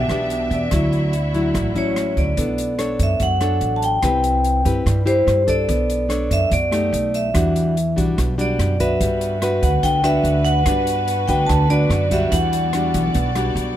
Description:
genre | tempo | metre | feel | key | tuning
bossa nova | 145 BPM | 4/4 | straight | B minor | A4 = 439 Hz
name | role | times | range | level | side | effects
vibraphone with medium hard mallets | melody | 0.0-13.8 s | C5 to A5 | -21 LUFS | right 1 dB | none
nylon-string guitar | accompaniment | 0.0-13.8 s | A2 to C#5 | -22 LUFS | left 2 dB | none
warm studio string section | sustained chords | 0.0-2.4, 9.0-13.8 s | B3 to E5 | -30 LUFS | equal | none
upright bass | bass | 0.0-13.8 s | A1 to G2 | -22 LUFS | right 1 dB | none
open jazz drum kit | drums | 0.1-13.7 s | hi-hat, kick drum, rim click | -27 LUFS | equal | none
room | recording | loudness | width
light reverb | none | -16 LUFS | side -12 dB against mid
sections
0.0-2.4 A section; 2.4-13.8 B section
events
none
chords
0.0 Em7; 0.7 Dmaj9; 2.4 Bm9; 4.0 Cmaj7; 5.7 Bm9; 6.9 B7alt; 7.3 Em9; 9.0 Gmaj7; 12.3 Em9

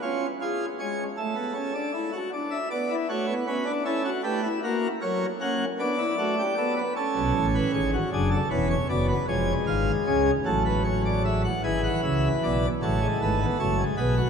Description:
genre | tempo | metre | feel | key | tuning
classical, baroque-style 4-part fugue for pipe organ | 52 BPM (dotted quarters) | 6/8 | straight | unclear | A4 = 439 Hz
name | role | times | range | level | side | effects
pipe organ, plenum | solo | 0.0-14.3 s | E1 to G#5 | -23 LUFS | equal | none
room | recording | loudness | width
wet cathedral reverb, RT60 6.3 s | in a vast, echoing space | -23 LUFS | side -6 dB against mid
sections
0.0-11.6 A section; 11.6-14.3 B section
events
none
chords
0.0 C#; 1.2 F#m/A; 3.5 C#m7b5/B; 4.6 F#; 5.8 Bm; 6.9 F#m; 8.1 G#m7b5; 9.3 C#/E#; 10.5 F#m/A; 11.6 E/G#; 12.8 A

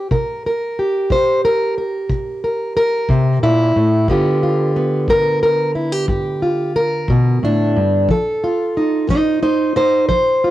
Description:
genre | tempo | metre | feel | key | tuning
acoustic country blues, solo or duo | 60 BPM (dotted quarters) | 12/8 | straight | unclear | A4 = 439 Hz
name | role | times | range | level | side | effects
fingerpicked plugged-in steel-string acoustic guitar | melody | 0.0-10.5 s | G2 to C5 | -14 LUFS | equal | cassette tape
kick drum | drums | 0.1-10.2 s | none | -24 LUFS | equal | cassette tape
room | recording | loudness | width
light reverb | home recording on cassette | -14 LUFS | side -14 dB against mid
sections
0.0-10.5 A section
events
none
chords
0.0 C7(no3); 4.1 G7; 8.1 F7

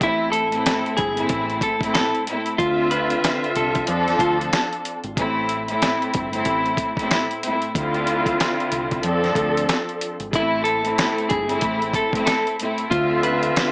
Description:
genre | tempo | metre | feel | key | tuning
hip hop, boom-bap hip-hop | 93 BPM | 4/4 | swing 58% on 16ths | A minor | A4 = 439 Hz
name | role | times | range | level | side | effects
clean electric guitar | melody | 0.0-4.4, 10.4-13.7 s | E4 to B4 | -22 LUFS | equal | high-pass filter, low-pass filter, plate reverb, digital delay
rich studio string section | accompaniment | 0.0-13.7 s | A2 to E5 | -21 LUFS | equal | cassette tape, high-pass filter, low-pass filter, plate reverb
deep dub fingered electric bass | bass | 0.0-13.5 s | G1 to F2 | -30 LUFS | equal | none
dusty soul sampler-style drum kit | drums | 0.0-13.7 s | hi-hat, kick drum, snare drum | -24 LUFS | equal | none
room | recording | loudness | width
moderate studio reverb, RT60 0.5 s | small speaker sound | -18 LUFS | side -27 dB against mid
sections
0.0-13.7 A section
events
none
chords
0.0 Am; 2.6 Dm9; 3.9 F6; 5.2 Am; 7.8 Dm9; 9.0 F6; 10.3 Am; 12.9 Dm9

